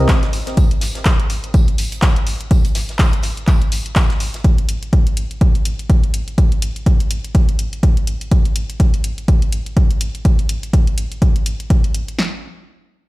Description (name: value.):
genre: piano house.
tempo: 124 BPM.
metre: 4/4.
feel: swing 57% on 16ths.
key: none.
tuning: none.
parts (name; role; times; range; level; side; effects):
downlifter; sound effects; 0.2-0.6 s; none; -39 LUFS; right 1 dB; none.
natural country drum kit; drums; 0.1-4.4 s; hi-hat, snare drum, tambourine; -33 LUFS; right 2 dB; sidechain pumping on hats, high-pass filter on hats, high-pass filter on snare, sidechain pumping on perc, high-pass filter on perc, high-pass filter on room.
punchy analog drum machine; drums; 0.1-12.3 s; kick drum, snare drum; -14 LUFS; equal; none.
punchy analog drum machine; drums; 0.1-12.2 s; handclaps, hi-hat; -25 LUFS; left 1 dB; none.
room: digital ambience.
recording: played on a big sound system in a bare room, large studio reverb.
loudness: -14 LUFS.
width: side -19 dB against mid.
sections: 0.0-12.2 A section.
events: none.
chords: none.